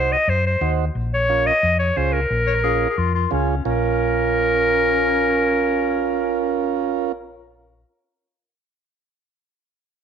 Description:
latin; 177 BPM; 4/4; straight; Bb minor; A4 = 441 Hz
bright clarinet; melody; 0.0-7.1 s; Bb4 to Eb5; -20 LUFS; left 2 dB
combo organ; accompaniment; 0.0-7.1 s; Db4 to C5; -23 LUFS; right 12 dB
hollow-body short-scale fingered electric bass; bass; 0.0-7.8 s; Bb1 to Gb2; -24 LUFS; left 1 dB
clear clarinet; second line; 2.5-7.1 s; Db4 to Db5; -27 LUFS; left 12 dB
wet spring reverb, RT60 1.3 s, small room ambience; 1960s-style stereo with parts hard left and right; -17 LUFS; side -7 dB against mid
0.0-3.7 A section; 3.7-6.4 B section
0.0 Cdim; 1.0 Bbm

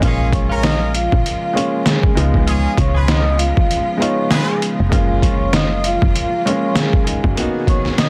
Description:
hip hop, boom-bap hip-hop; 98 BPM; 4/4; swing 58% on 16ths; A4 = 437 Hz
dark upright piano; accompaniment; 0.0-8.1 s; G#3 to D#5; -24 LUFS; equal
rich studio string section; sustained chords; 0.0-8.1 s; B2 to G#4; -30 LUFS; equal
clear horn section; stabs; 0.0-4.6 s; C#4 to B4; -28 LUFS; equal; tape echo
woody FM bass; bass; 0.0-7.3 s; E#1 to C#2; -21 LUFS; equal
trip hop sampler-style drum kit; drums; 0.0-8.1 s; hi-hat, kick drum, snare drum; -20 LUFS; equal; overdrive
vibraphone with soft mallets; melody; 0.3-8.1 s; E#4 to D#6; -25 LUFS; equal
small room reverb; dense, heavily limited modern master, vinyl crackle; -16 LUFS; mono
0.0-8.1 A section
0.0 A#m7; 2.2 C#7; 4.9 F#maj7; 7.4 G#m7

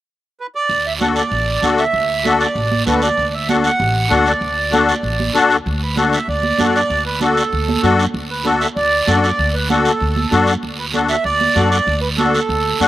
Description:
latin, cumbia; 193 BPM; 4/4; straight; D major; A4 = 440 Hz
accordion; melody; 0.4-12.9 s; A4 to F#5; -18 LUFS; right 3 dB
upright bass; bass; 0.7-12.9 s; A1 to F#2; -22 LUFS; equal
guiro; percussion; 0.7-12.9 s; -25 LUFS; right 5 dB
musette accordion; accompaniment; 1.0-12.9 s; D4 to A4; -17 LUFS; left 4 dB; slapback echo
congas; percussion; 1.0-12.9 s; -24 LUFS; right 4 dB
little or no reverb; recorded outdoors, with no room sound; -14 LUFS; side -14 dB against mid
0.7-5.7 A section; 5.7-12.9 B section
0.0 N.C.; 0.7 D

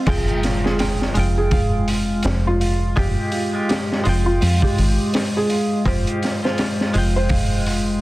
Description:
trip hop; 83 BPM; 4/4; swing 57% on 16ths; F minor; A4 = 440 Hz
felt-muted upright piano; melody; 0.0-7.6 s; F4 to C5; -26 LUFS; right 1 dB; vintage 12-bit sampler grit, tape echo
direct-recorded clean electric guitar; accompaniment; 0.0-8.0 s; Ab3 to G5; -28 LUFS; equal; tremolo, vintage 12-bit sampler grit, tape echo
dark analog pad; sustained chords; 0.0-8.0 s; Ab3; -25 LUFS; left 1 dB; chorus
nylon-string guitar; arpeggios; 0.0-8.0 s; F4 to G5; -29 LUFS; right 2 dB; tape echo
deep dub fingered electric bass; bass; 0.0-8.0 s; F1 to F2; -19 LUFS; equal; tube saturation
swell and impact; sound effects; 0.0-3.0 s; -27 LUFS; equal
crunchy breakbeat drum kit; drums; 0.1-7.9 s; crash cymbal, hi-hat, kick drum, snare drum; -23 LUFS; equal; low-pass filter on kick, vintage 12-bit sampler grit, low-pass filter on hats, low-pass filter on cymbals, low-pass filter on snare, low-pass filter on room
little or no reverb; dense, heavily limited modern master, vinyl crackle; -17 LUFS; side -18 dB against mid
0.1-8.0 A section
impact 0.1-3.0
0.1 Fmadd9

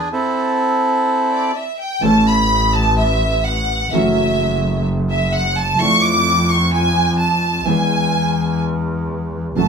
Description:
tango; 127 BPM; 4/4; rubato; A major; A4 = 438 Hz
bandoneon; melody; 0.0-1.5 s; C4 to A4; -16 LUFS; right 1 dB
clear chamber violin section; second line; 0.0-9.7 s; D5 to D6; -18 LUFS; right 1 dB
warm concert grand piano; accompaniment; 2.0-9.7 s; A1 to A4; -20 LUFS; equal
bright double bass; bass; 2.0-9.7 s; F#1 to F2; -20 LUFS; equal
wet small room ambience, RT60 0.5 s; band playing live in one room; -14 LUFS; side -6 dB against mid
0.0-2.0 A section; 2.0-9.7 B section
violin section solo 2.0-9.7
0.1 Am; 2.0 A; 3.9 F#m7; 5.8 Dmadd9/F; 7.7 E

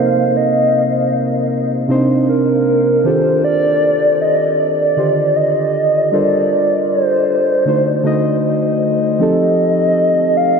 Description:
R&B; 78 BPM; 4/4; straight; A4 = 440 Hz
hollow clarinet-like synth lead; melody; 0.0-10.6 s; Bb4 to F5; -15 LUFS; equal; chorus, diffuse ambient delay
muted felt-like synth keys; accompaniment; 0.0-10.6 s; C3 to Eb5; -16 LUFS; right 1 dB; chorus
wet huge ambient reverb, RT60 7.9 s; dreamy mix soaked in reverb; -12 LUFS; side -5 dB against mid
0.0-9.2 A section; 9.2-10.6 B section
0.0 Cm7; 3.0 Ebmaj9#11; 6.1 Gm11; 7.7 D7b9; 9.2 F7

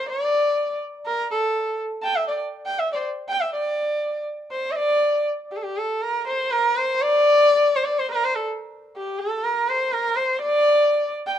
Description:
indian classical; 122 BPM; 7/4; straight; A4 = 440 Hz
rich sarangi; solo; 0.0-11.4 s; G4 to A5; -20 LUFS; equal
moderate small room reverb, RT60 0.5 s; minimal, uncompressed stereo recording; -20 LUFS; side -10 dB against mid
0.0-3.5 A section; 3.5-11.4 B section

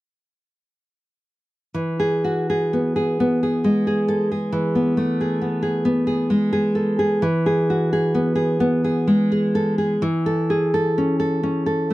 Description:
romantic piece for solo classical guitar; 65 BPM; 3/4; uneven beats, rubato; E major; A4 = 439 Hz
nylon-string guitar; solo; 1.7-11.9 s; E3 to A4; -18 LUFS; equal
little or no reverb; dry, close 1970s-style studio recording; -18 LUFS; side -17 dB against mid
1.7-11.9 A section
1.7 E; 10.0 A/E

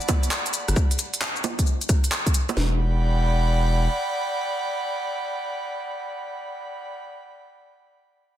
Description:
UK garage, two-step garage; 133 BPM; 4/4; swing 66% on 16ths; E minor; A4 = 437 Hz
airy breathy pad; sustained chords; 0.0-6.9 s; D5 to B5; -28 LUFS; right 1 dB; chorus, sidechain pumping
garage drum kit; drums; 0.0-2.6 s; bongos, handclaps, hi-hat, rim click, shaker; -26 LUFS; right 1 dB; soft clipping on snare
house drum kit; drums; 0.1-2.7 s; kick drum, snare drum; -22 LUFS; equal; overdrive
saturated sub bass; bass; 0.7-3.9 s; E1 to G1; -21 LUFS; equal
light reverb; dense, heavily limited modern master; -22 LUFS; side -12 dB against mid
0.0-2.6 A section; 2.6-6.2 B section
drop 0.0-2.6
0.0 Gmaj9 (rootless); 0.8 N.C.; 2.6 Em7

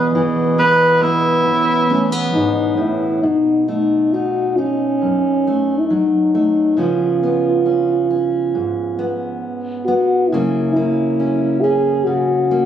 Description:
acoustic folk-pop ballad; 68 BPM; 4/4; straight; A4 = 438 Hz
warm cor anglais; melody; 0.0-2.3 s; E4 to B4; -15 LUFS; right 1 dB
fingerpicked steel-string acoustic guitar; accompaniment; 0.0-12.7 s; E2 to D#4; -20 LUFS; equal
pedal harmonium; sustained chords; 0.0-3.2 s; B2 to D#5; -25 LUFS; equal
mellow French horn; second line; 1.9-12.7 s; C#4 to G#4; -16 LUFS; equal
light reverb; recorded on a phone in the room, studio reverb, compression; -14 LUFS; side -9 dB against mid
0.0-3.2 A section; 3.2-12.7 B section
French horn solo 3.2-12.7
0.0 Emaj7; 3.2 B7; 6.8 C#7; 10.3 F#7/C#

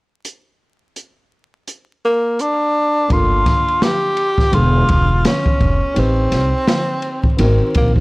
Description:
hip hop, jazz-hop; 84 BPM; 4/4; swing 59% on 16ths; A4 = 443 Hz
open jazz drum kit; drums; 0.2-8.0 s; hi-hat, kick drum, ride cymbal, snare drum; -18 LUFS; equal; vintage 12-bit sampler grit
breathy tenor saxophone; melody; 2.0-7.9 s; Bb3 to G4; -17 LUFS; equal; tape echo
dark concert grand piano; accompaniment; 3.1-8.0 s; D3 to B4; -22 LUFS; equal
upright bass; bass; 3.1-8.0 s; E1 to C2; -16 LUFS; equal
small room ambience; dry, gritty hardware recording, transformer saturation, vinyl crackle; -13 LUFS; side -25 dB against mid
0.2-3.1 A section; 3.1-8.0 B section
0.2 N.C.; 3.1 Gm9; 4.5 E7b9; 6.0 Am7b5; 7.4 Ab9

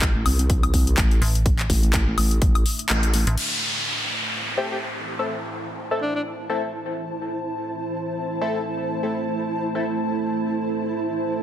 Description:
bass house; 125 BPM; 4/4; swing 56% on 16ths; A minor; A4 = 440 Hz
deep dark ambient pad; sustained chords; 0.5-11.4 s; A3 to E5; -31 LUFS; right 3 dB; chorus, built-in reverb, sidechain pumping
vowel-sweep wobble bass; bass; 0.0-3.3 s; A1 to C2; -21 LUFS; equal; chorus, overdrive, sidechain pumping
electronic kick drum; drums; 0.0-2.5 s; -21 LUFS; equal
house drum kit; drums; 0.0-3.5 s; crash cymbal, handclaps, hi-hat, woodblock; -25 LUFS; left 2 dB; overdrive
metallic FM bass; bass; 1.2-3.4 s; A1; -21 LUFS; equal; tube saturation, sidechain pumping
downlifter; sound effects; 3.4-7.2 s; -27 LUFS; equal
granular cloud pad; texture; 4.6-11.4 s; E4 to A5; -29 LUFS; equal; built-in reverb, sidechain pumping
breathy alto saxophone; melody; 4.6-6.2 s; D4 to G4; -30 LUFS; equal; vintage 12-bit sampler grit, tape echo
band-passed chord stab; stabs; 4.6-9.8 s; A3 to A4; -28 LUFS; left 2 dB; chorus, phaser, sidechain pumping, tape echo
moderate plate reverb, RT60 1.4 s; dense, heavily limited modern master; -21 LUFS; side -11 dB against mid
0.0-3.4 A section; 3.4-11.4 B section
drop 0.0-3.4; kick drops out 2.9-3.4; band accent 2.9; filter sweep on ambient pad 3.4-11.4
0.0 Am

